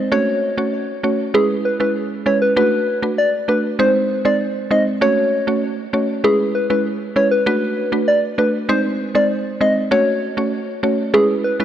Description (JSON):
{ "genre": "dancehall", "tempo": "98 BPM", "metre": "4/4", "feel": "straight", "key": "unclear", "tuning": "A4 = 440 Hz", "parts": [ { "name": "mallet-like synth pluck", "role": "accompaniment", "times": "0.0-11.6 s", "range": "G#3 to C#5", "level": "-19 LUFS", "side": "right 1 dB", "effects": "chorus" }, { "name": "soft struck synth lead", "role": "melody", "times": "0.1-11.6 s", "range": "G#4 to D#5", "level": "-18 LUFS", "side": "left 1 dB", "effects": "chorus, tape echo" } ], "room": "moderate lush hall reverb, RT60 2.8 s", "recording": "dry, gritty hardware recording, transformer saturation", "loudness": "-15 LUFS", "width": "side -10 dB against mid", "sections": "0.0-11.1 A section", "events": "none", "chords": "0.1 F#m; 1.3 C#m7; 2.6 Bm7; 3.8 G#; 5.0 F#m; 6.2 C#m7; 7.5 Bm7; 8.7 G#; 9.9 F#m; 11.1 C#m7", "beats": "0.12 0.73 | 1.34 1.96 2.57 3.18 | 3.79 4.41 5.02 5.63 | 6.24 6.85 7.47 8.08 | 8.69 9.30 9.92 10.53 | 11.14" }